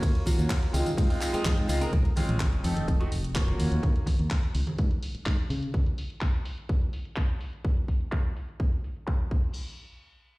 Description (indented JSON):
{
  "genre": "filtered disco house",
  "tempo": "126 BPM",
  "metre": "4/4",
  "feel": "straight",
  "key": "unclear",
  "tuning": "A4 = 438 Hz",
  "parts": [
    { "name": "bright grand piano", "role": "accompaniment", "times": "0.0-4.0 s", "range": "Ab3 to Bb4", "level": "-32 LUFS", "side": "equal", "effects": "phaser, sidechain pumping, low-pass filter" },
    { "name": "fingered electric bass", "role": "bass", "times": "0.0-5.7 s", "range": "F1 to Db3", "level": "-28 LUFS", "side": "equal", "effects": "sidechain pumping, low-pass filter" },
    { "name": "electronic kick drum", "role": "drums", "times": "0.0-9.4 s", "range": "none", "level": "-26 LUFS", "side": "equal", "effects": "none" },
    { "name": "house drum kit", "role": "drums", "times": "0.0-9.4 s", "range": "crash cymbal, handclaps, hi-hat, ride cymbal, tambourine", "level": "-38 LUFS", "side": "equal", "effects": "sidechain pumping on hats, low-pass filter on hats, sidechain pumping on perc, low-pass filter on perc, sidechain pumping on cymbals, low-pass filter on cymbals, low-pass filter on snare, low-pass filter on room" },
    { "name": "congas and egg shaker", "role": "percussion", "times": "0.0-5.7 s", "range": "none", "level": "-36 LUFS", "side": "right 1 dB", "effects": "sidechain pumping on perc, low-pass filter on perc" },
    { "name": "sub drop", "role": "sound effects", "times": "1.9-3.8 s", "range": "none", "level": "-33 LUFS", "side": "equal", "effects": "none" }
  ],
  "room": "little or no reverb",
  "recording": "played on a big sound system in a bare room, large studio reverb",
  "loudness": "-25 LUFS",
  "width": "side -21 dB against mid",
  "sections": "0.0-1.9 A section; 1.9-9.5 B section",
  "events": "drop 0.0-1.9; impact 1.9-3.8; filter sweep on drum 1.9-9.5",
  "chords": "0.0 Ebm9; 0.7 Dbmaj9; 1.9 Bbm9 (rootless); 2.6 F7b9; 3.6 Ebm9; 4.5 Db5; 5.7 N.C."
}